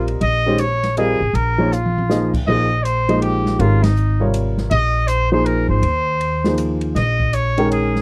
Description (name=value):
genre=modal jazz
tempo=160 BPM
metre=3/4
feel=swing 63% on 8ths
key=unclear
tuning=A4 = 437 Hz
part: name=warm trumpet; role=melody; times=0.0-8.0 s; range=Eb4 to Eb5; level=-23 LUFS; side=equal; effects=none
part: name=warm upright piano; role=accompaniment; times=0.0-8.0 s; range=C3 to G5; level=-22 LUFS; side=equal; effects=none
part: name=upright bass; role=bass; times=0.0-8.0 s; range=Ab1 to Eb2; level=-22 LUFS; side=equal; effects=none
part: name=open jazz drum kit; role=drums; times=0.1-8.0 s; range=crash cymbal, hi-hat, kick drum, ride cymbal, snare drum, toms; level=-28 LUFS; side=equal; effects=none
room=little or no reverb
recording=dry, close 1970s-style studio recording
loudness=-18 LUFS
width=mono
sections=0.0-8.0 A section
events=drum fill 1.7-2.1; band accent 3.8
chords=0.0 Bb7sus2; 2.5 Abadd9; 7.0 Bbm7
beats=| 0.22 0.59 0.97 | 1.34 1.72 2.09 | 2.47 2.84 3.22 | 3.59 3.96 4.34 | 4.71 5.09 5.46 | 5.84 6.21 6.59 | 6.97 7.34 7.72